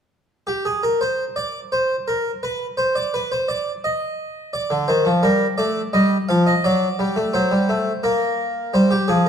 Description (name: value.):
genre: classical, baroque-style two-part invention for harpsichord.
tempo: 85 BPM.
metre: 3/4.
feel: straight.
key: unclear.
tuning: A4 = 440 Hz.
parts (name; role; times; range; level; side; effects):
harpsichord; solo; 0.5-9.3 s; D3 to F5; -18 LUFS; equal; none.
room: moderate recital hall reverb, RT60 1.6 s.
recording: dark, warm production.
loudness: -18 LUFS.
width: side -8 dB against mid.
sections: 0.3-9.3 A section.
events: none.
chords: 0.3 N.C.; 4.5 Gm/D; 5.9 Ebadd9; 6.6 D/F#; 8.0 N.C.; 8.7 C5.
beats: | 0.30 1.01 1.72 | 2.43 3.13 3.84 | 4.54 5.24 5.94 | 6.65 7.35 8.04 | 8.74.